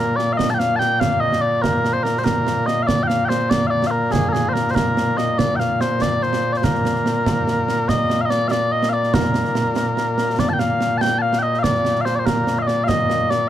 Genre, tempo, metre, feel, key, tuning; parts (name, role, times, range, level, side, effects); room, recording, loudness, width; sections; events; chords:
scottish traditional, Scottish pipe music; 96 BPM (dotted quarters); 6/8; straight; Bb major; A4 = 439 Hz
mellow small bagpipes; melody; 0.0-13.5 s; Bb2 to A5; -18 LUFS; left 1 dB
concert snare drum and concert bass drum; drums; 0.2-13.4 s; -22 LUFS; right 3 dB
light reverb; -17 LUFS; side -11 dB against mid
0.0-7.9 A section; 7.9-13.5 B section